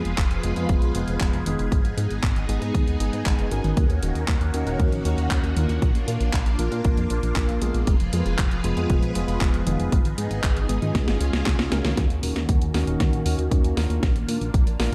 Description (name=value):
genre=italo disco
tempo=117 BPM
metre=4/4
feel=straight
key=Eb minor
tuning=A4 = 440 Hz
part: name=phased string machine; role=sustained chords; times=0.0-14.9 s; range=Eb3 to Cb5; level=-33 LUFS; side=equal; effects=ensemble chorus, phaser
part: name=bright tine electric piano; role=stabs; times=0.0-14.9 s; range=Ab3 to Bb4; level=-32 LUFS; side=equal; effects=low-pass filter, delay
part: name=chorused synth bass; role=bass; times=0.0-14.9 s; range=Eb1 to Bb2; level=-28 LUFS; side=equal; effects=none
part: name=house drum kit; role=drums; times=0.1-14.9 s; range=handclaps, hi-hat, snare drum, toms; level=-32 LUFS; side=equal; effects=high-pass filter on hats, high-pass filter on snare, high-pass filter on toms, high-pass filter on room
part: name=electronic kick drum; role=drums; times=0.2-14.6 s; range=none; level=-24 LUFS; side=equal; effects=none
room=light reverb, digital ambience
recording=dark, warm production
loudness=-23 LUFS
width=mono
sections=0.0-12.0 A section; 12.0-14.9 B section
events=drum fill 10.9-12.0, 12.0-14.9; band accent 11.8; filter sweep on tine electric piano 12.0-14.9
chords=0.0 Fdim; 1.7 Abm; 3.8 Ebm7; 5.8 Bb; 7.9 Fdim; 9.9 Abm; 10.9 Db; 12.0 Ebm7; 14.0 Bb